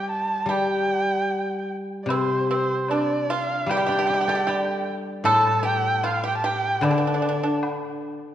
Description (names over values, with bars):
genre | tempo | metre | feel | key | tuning
chinese traditional, Chinese chamber ensemble | 75 BPM | 2/4 | rubato | G shang mode | A4 = 439 Hz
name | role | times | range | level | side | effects
dark erhu | melody | 0.0-7.6 s | C5 to A5 | -25 LUFS | right 2 dB | none
pipa | second line | 0.0-7.6 s | C4 to A4 | -27 LUFS | right 2 dB | none
guzheng | accompaniment | 0.0-8.3 s | A2 to D5 | -26 LUFS | left 2 dB | none
woodblock | percussion | 2.1-7.8 s | none | -36 LUFS | left 2 dB | none
room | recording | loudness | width
wet concert hall reverb, RT60 2.2 s | worn, warbling old tape, cassette tape, warbly pitch drift | -21 LUFS | side -11 dB against mid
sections
0.0-2.1 A section; 2.1-8.3 B section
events
none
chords
none